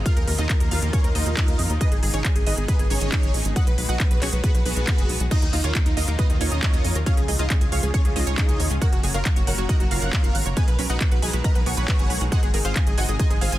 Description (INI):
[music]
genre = uplifting trance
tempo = 137 BPM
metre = 4/4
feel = straight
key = Eb minor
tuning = A4 = 440 Hz
[part]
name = lush unison pad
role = sustained chords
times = 0.0-13.6 s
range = Ab2 to Bb4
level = -33 LUFS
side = left 1 dB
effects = chorus, sidechain pumping
[part]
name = tight sequencer bass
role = bass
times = 0.0-13.6 s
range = F#1 to F2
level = -25 LUFS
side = equal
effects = sidechain pumping
[part]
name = supersaw chords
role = melody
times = 0.1-13.6 s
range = Cb4 to Db6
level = -30 LUFS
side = right 1 dB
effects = ensemble chorus, cassette tape, sidechain pumping, dub echo
[part]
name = analog pluck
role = second line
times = 0.1-13.6 s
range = Eb4 to Db6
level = -34 LUFS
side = equal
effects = chorus, vintage 12-bit sampler grit, sidechain pumping, dub echo
[part]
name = electronic kick drum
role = drums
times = 0.1-13.3 s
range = none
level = -21 LUFS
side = equal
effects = studio reverb
[part]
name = techno drum kit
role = drums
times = 0.1-13.6 s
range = crash cymbal, handclaps, hi-hat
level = -29 LUFS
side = right 1 dB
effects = sidechain pumping on hats, studio reverb, sidechain pumping on cymbals
[part]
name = analog pluck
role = arpeggios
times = 5.3-13.6 s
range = B2 to Ab5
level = -32 LUFS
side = right 4 dB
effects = analog chorus, sidechain pumping, dub echo
[sound]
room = digital ambience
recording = dense, heavily limited modern master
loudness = -19 LUFS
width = side -15 dB against mid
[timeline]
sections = 0.0-13.6 A section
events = none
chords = 0.1 Ebsus2; 1.8 Abm; 3.6 B6; 5.3 Ebsus2; 7.1 Db; 8.8 Gb; 10.6 B6; 12.3 Ab